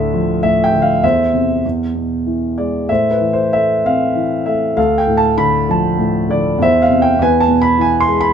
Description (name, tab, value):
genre	classical, lyrical solo piano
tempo	98 BPM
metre	3/4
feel	rubato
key	A minor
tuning	A4 = 439 Hz
part	warm concert grand piano	solo	0.0-8.3 s	D2 to C6	-12 LUFS	equal	none
room	light reverb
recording	close, detailed microphones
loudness	-12 LUFS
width	side -8 dB against mid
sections	0.0-8.3 A section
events	none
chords	0.0 Dmadd9; 1.0 C/E; 1.6 E; 2.9 Am; 4.8 Dm; 6.6 Cadd11/E; 7.2 E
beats	0.43 | 1.03 1.65 2.27 | 2.90 3.53 4.16 | 4.77 5.38 5.99 | 6.60 7.19 7.79